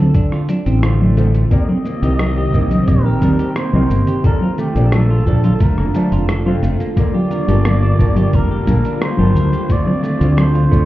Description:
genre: sunset chillout.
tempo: 88 BPM.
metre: 4/4.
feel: straight.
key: C dorian.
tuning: A4 = 439 Hz.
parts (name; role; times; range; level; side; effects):
trumpet with cup mute; melody; 0.0-10.9 s; G4 to Eb5; -26 LUFS; equal; tape echo.
hollow-body jazz guitar; accompaniment; 0.0-10.9 s; C3 to A5; -22 LUFS; moving between left 3 dB and right 5 dB; auto-pan, tape echo.
clean electric guitar; arpeggios; 0.0-10.9 s; A3 to Bb4; -25 LUFS; right 2 dB; tape echo.
mellow fretless electric bass; bass; 0.0-10.9 s; F1 to Eb2; -14 LUFS; equal; none.
dusty soul sampler-style drum kit; drums; 0.1-10.9 s; hi-hat, rim click, shaker; -28 LUFS; equal; none.
electronic kick drum; drums; 0.1-10.9 s; none; -15 LUFS; equal; none.
congas; percussion; 0.5-10.5 s; none; -21 LUFS; left 1 dB; none.
soft string machine; sustained chords; 1.5-10.9 s; D3 to A5; -23 LUFS; right 1 dB; ensemble chorus.
room: light reverb.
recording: heard muffled through a wall, club reverb, EQ.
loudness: -13 LUFS.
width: side -15 dB against mid.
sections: 0.0-10.9 A section.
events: none.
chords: 0.0 Dm7; 1.5 Cm7; 4.2 Bbmaj7; 7.0 Gm7; 9.7 Dm7.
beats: 0.15 0.83 | 1.51 2.19 2.88 3.56 | 4.24 4.92 5.60 6.29 | 6.97 7.65 8.33 9.01 | 9.69 10.38.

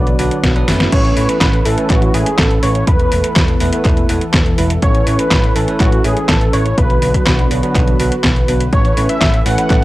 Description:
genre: italo disco.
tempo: 123 BPM.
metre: 4/4.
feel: straight.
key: A major.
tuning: A4 = 440 Hz.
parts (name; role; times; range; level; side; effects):
wide unison lead; melody; 0.0-9.8 s; F#4 to F#5; -20 LUFS; equal; cassette tape, analog delay.
warm analog pad; sustained chords; 0.0-9.8 s; D3 to B4; -20 LUFS; equal; chorus.
bell-like tine electric piano; stabs; 0.0-9.8 s; F#3 to B4; -21 LUFS; right 2 dB; lush chorus.
picked electric bass with an envelope filter; bass; 0.0-9.8 s; E1 to B1; -18 LUFS; equal; none.
detuned 8-bit digital drum machine; drums; 0.1-9.8 s; crash cymbal, handclaps, hi-hat, snare drum; -18 LUFS; equal; overdrive.
electronic kick drum; drums; 0.4-9.8 s; none; -16 LUFS; equal; overdrive.
room: little or no reverb.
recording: dry, gritty hardware recording, cassette tape.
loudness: -11 LUFS.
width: side -17 dB against mid.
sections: 0.9-9.8 A section.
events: drum fill 0.7.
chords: 0.0 Bm; 0.9 Aadd9; 2.9 Esus4; 4.8 Aadd9; 6.8 Bm; 8.7 Aadd9.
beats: 0.43 | 0.92 1.41 1.90 2.39 | 2.87 3.36 3.85 4.34 | 4.83 5.31 5.80 6.29 | 6.78 7.26 7.75 8.24 | 8.73 9.22 9.70.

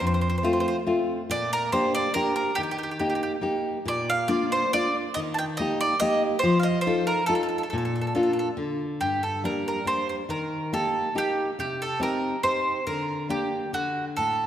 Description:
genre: italian folk, Italian serenade.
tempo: 140 BPM.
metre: 3/4.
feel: straight.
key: Bb major, G harmonic minor from 9.0 s.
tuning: A4 = 440 Hz.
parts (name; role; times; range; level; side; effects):
bowl-back mandolin; melody; 0.0-14.5 s; F#4 to A5; -26 LUFS; right 1 dB; none.
nylon-string guitar; accompaniment; 0.0-14.5 s; F2 to A4; -26 LUFS; left 1 dB; none.
room: wet concert hall reverb, RT60 2.1 s.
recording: none.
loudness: -23 LUFS.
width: side -10 dB against mid.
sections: 0.0-9.0 A section; 9.0-14.5 B section.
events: none.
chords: 0.0 F; 1.3 Bb6; 2.6 Eb; 3.9 Bb; 5.2 Eb; 6.4 F7; 7.7 Bb; 8.6 N.C.; 9.0 Gm; 10.3 Eb; 11.6 Cm; 12.9 Gm/D; 13.7 N.C..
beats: | 0.01 0.45 0.88 | 1.30 1.73 2.16 | 2.58 3.01 3.44 | 3.87 4.30 4.73 | 5.16 5.59 6.01 | 6.44 6.87 7.29 | 7.72 8.15 8.58 | 9.01 9.44 9.87 | 10.30 10.73 11.16 | 11.58 12.01 12.44 | 12.87 13.30 13.73 | 14.16.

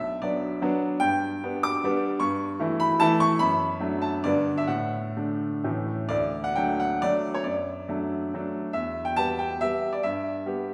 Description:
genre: classical, romantic triple-time dance for piano with dotted rhythms.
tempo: 118-162 BPM.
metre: 3/4.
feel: rubato.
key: D major.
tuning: A4 = 440 Hz.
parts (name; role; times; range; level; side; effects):
clear baby grand piano; solo; 0.0-10.7 s; B1 to D6; -26 LUFS; equal; none.
room: wet recital hall reverb, RT60 1.6 s.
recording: heard from further back in the room.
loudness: -26 LUFS.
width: mono.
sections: 0.0-6.1 A section; 6.1-10.7 B section.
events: none.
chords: 0.0 Bm; 1.0 G; 2.2 A7/G; 3.4 D/F#; 4.2 G; 4.7 D/A; 5.6 A; 6.1 D; 7.4 D/F#; 8.7 Em; 10.0 Em/G.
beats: 0.21 0.61 | 1.00 1.41 1.83 | 2.21 2.60 3.01 | 3.40 3.81 4.24 | 4.69 5.17 5.64 | 6.09 6.56 7.03 | 7.45 7.89 8.34 | 8.74 9.18 9.62 | 10.04 10.46.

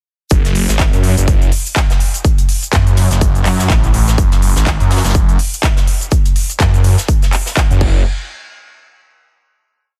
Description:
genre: bass house.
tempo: 124 BPM.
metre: 4/4.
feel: swing 57% on 16ths.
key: F# minor.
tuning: A4 = 440 Hz.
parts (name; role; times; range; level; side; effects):
phased detuned saw bass; bass; 0.3-8.0 s; F#1 to F#2; -15 LUFS; equal; phaser, overdrive, sidechain pumping.
big-room dance drum kit; drums; 0.3-7.9 s; crash cymbal, handclaps, hi-hat, shaker; -23 LUFS; equal; none.
electronic kick drum; drums; 0.3-7.9 s; none; -16 LUFS; equal; none.
tight metal drum kit; drums; 0.3-7.7 s; hi-hat, shaker, snare drum; -30 LUFS; equal; high-pass filter on hats, high-pass filter on snare, high-pass filter on perc, high-pass filter on room.
room: little or no reverb.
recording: dense, heavily limited modern master.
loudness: -13 LUFS.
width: mono.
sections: 0.3-8.1 drop; 8.1-10.0 final hit.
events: drop 0.3-8.1.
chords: none.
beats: | 0.31 0.79 1.28 1.76 | 2.25 2.73 3.21 3.70 | 4.18 4.67 5.15 5.63 | 6.12 6.60 7.08 7.57.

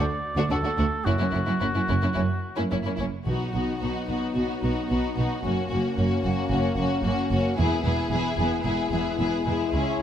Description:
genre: cinematic, heroic adventure film score.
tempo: 111 BPM.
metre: 4/4.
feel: straight.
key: B major from 3.3 s.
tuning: A4 = 441 Hz.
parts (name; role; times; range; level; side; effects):
mellow oboe; second line; 0.0-2.7 s; F#4 to D5; -29 LUFS; equal; none.
warm symphonic violin section; second line; 0.0-10.0 s; C#4 to E4; -32 LUFS; left 2 dB; none.
warm symphonic viola section; accompaniment; 0.0-10.0 s; A3 to C#4; -32 LUFS; equal; none.
rich symphonic double bass section; bass; 0.0-9.8 s; E1 to D2; -29 LUFS; right 2 dB; none.
warm symphonic cello section; bass; 0.0-9.8 s; C#2 to B2; -29 LUFS; right 2 dB; none.
warm symphonic violin section; melody; 0.4-10.0 s; E4 to G#4; -31 LUFS; left 3 dB; none.
mellow French horn section; sustained chords; 3.3-10.0 s; F#3 to E4; -31 LUFS; left 6 dB; none.
timpani; percussion; 3.3-4.0 s; B2; -34 LUFS; equal; none.
room: moderate scoring stage reverb, RT60 1.9 s.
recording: none.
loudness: -23 LUFS.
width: side -10 dB against mid.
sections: 0.0-3.3 A section; 3.3-10.0 B section.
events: none.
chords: 0.0 D; 1.1 F#7; 3.3 B; 5.4 F#; 7.6 E.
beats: 0.51 | 1.06 1.61 2.17 2.72 | 3.27 3.82 4.36 4.90 | 5.44 5.97 6.51 7.04 | 7.58 8.11 8.65 9.19 | 9.74.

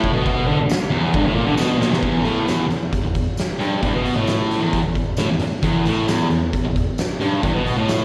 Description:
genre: garage rock duo or trio.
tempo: 133 BPM.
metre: 4/4.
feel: straight.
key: unclear.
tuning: A4 = 441 Hz.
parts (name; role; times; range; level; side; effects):
thick fuzz guitar; riff; 0.0-8.0 s; E2 to D3; -21 LUFS; equal; distortion, slapback echo.
oversized low-tuned drum kit; drums; 0.0-8.0 s; crash cymbal, hi-hat, kick drum, snare drum; -25 LUFS; equal; none.
tambourine; percussion; 0.7-8.0 s; none; -40 LUFS; equal; none.
room: moderate club reverb, RT60 0.5 s.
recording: live gig heard through the venue's PA, recital hall reverb.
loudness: -20 LUFS.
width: mono.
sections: 0.0-2.0 A section; 2.0-8.0 B section.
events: drum fill 1.6-2.0.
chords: none.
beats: | 0.26 0.70 1.15 1.59 | 2.04 2.48 2.93 3.38 | 3.83 4.28 4.73 5.18 | 5.63 6.08 6.54 6.99 | 7.44 7.89.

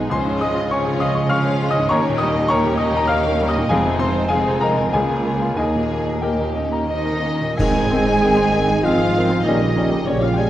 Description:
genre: classical, romantic movement for piano and orchestra.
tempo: 82-104 BPM.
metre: 3/4.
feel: rubato.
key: Ab major.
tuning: A4 = 440 Hz.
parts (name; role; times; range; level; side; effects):
clear baby grand piano; melody; 0.0-10.5 s; B1 to F6; -20 LUFS; left 1 dB; none.
clear symphonic violin section; melody; 0.0-10.5 s; G4 to Ab5; -30 LUFS; left 4 dB; none.
rich studio violin section; second line; 0.0-10.5 s; Bb3 to G#4; -29 LUFS; left 3 dB; none.
rich symphonic viola section; accompaniment; 0.0-10.5 s; Eb3 to Eb4; -26 LUFS; equal; none.
rich symphonic double bass section; bass; 0.0-10.5 s; F1 to Eb2; -25 LUFS; right 2 dB; none.
warm symphonic cello section; bass; 0.0-10.5 s; Db2 to Ab3; -26 LUFS; right 3 dB; none.
bright silver concert flute; second line; 6.9-10.5 s; Db5 to Ab5; -26 LUFS; left 1 dB; none.
mellow oboe; second line; 6.9-10.5 s; Db5 to Ab5; -28 LUFS; right 1 dB; none.
warm French horn section; sustained chords; 6.9-10.5 s; Db4 to Ab4; -24 LUFS; equal; none.
clear clarinet; second line; 7.6-10.5 s; C4 to Db4; -27 LUFS; equal; none.
mellow bassoon; accompaniment; 7.6-10.5 s; Eb3 to G3; -27 LUFS; right 1 dB; none.
dark trombone section; sustained chords; 7.6-10.5 s; Db3 to Db4; -27 LUFS; right 3 dB; none.
clash cymbals and concert bass drum; percussion; 7.6-8.8 s; none; -29 LUFS; equal; none.
timpani; percussion; 7.6-8.5 s; Ab2; -30 LUFS; equal; none.
room: moderate scoring stage reverb, RT60 2.1 s.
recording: worn, warbling old tape, cassette tape, warbly pitch drift.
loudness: -16 LUFS.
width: side -13 dB against mid.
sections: 0.0-7.6 A section; 7.6-10.5 B section.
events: band accent 7.6-8.2.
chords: 0.1 Dbmaj7; 1.9 Eb7; 3.7 Fm7; 4.9 Bbm/Db; 5.6 Eb; 7.6 Ab; 9.5 Gdim/Bb.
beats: | 0.12 0.71 1.31 | 1.90 2.50 3.10 | 3.70 4.31 4.93 | 5.58 6.23 6.88 | 7.58 8.22 8.84 | 9.46 10.07.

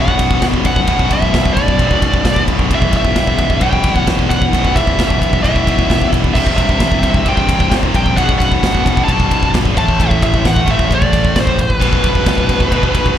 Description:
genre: heavy metal.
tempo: 132 BPM.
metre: 4/4.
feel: straight.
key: B phrygian.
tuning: A4 = 440 Hz.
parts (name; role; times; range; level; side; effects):
high-gain lead guitar; melody; 0.0-13.2 s; B4 to A5; -18 LUFS; right 1 dB; distortion, slapback echo, ping-pong delay.
pipe organ, trumpet; sustained chords; 0.0-13.2 s; C3 to C5; -31 LUFS; equal; none.
distorted electric guitar; riff; 0.0-13.2 s; B1 to A3; -19 LUFS; left 13 dB; overdrive, slapback echo.
heavy high-gain guitar; riff; 0.0-13.2 s; B1 to A3; -21 LUFS; right 14 dB; distortion.
fuzz picked electric bass; bass; 0.0-13.1 s; B0 to A#1; -19 LUFS; right 1 dB; overdrive.
big rock drum kit; drums; 0.1-13.2 s; crash cymbal, kick drum, ride cymbal, snare drum; -16 LUFS; equal; none.
room: little or no reverb.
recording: live gig heard through the venue's PA, club reverb.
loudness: -11 LUFS.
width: side -10 dB against mid.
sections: 0.0-13.2 A section.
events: none.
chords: 0.0 Bm; 2.7 Em/B; 6.3 C; 8.2 Bm; 9.8 Am; 11.8 Bm.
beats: 0.42 | 0.87 1.33 1.78 2.24 | 2.70 3.15 3.61 4.07 | 4.52 4.98 5.43 5.89 | 6.35 6.80 7.26 7.72 | 8.17 8.63 9.09 9.54 | 10.00 10.45 10.91 11.36 | 11.82 12.27 12.73.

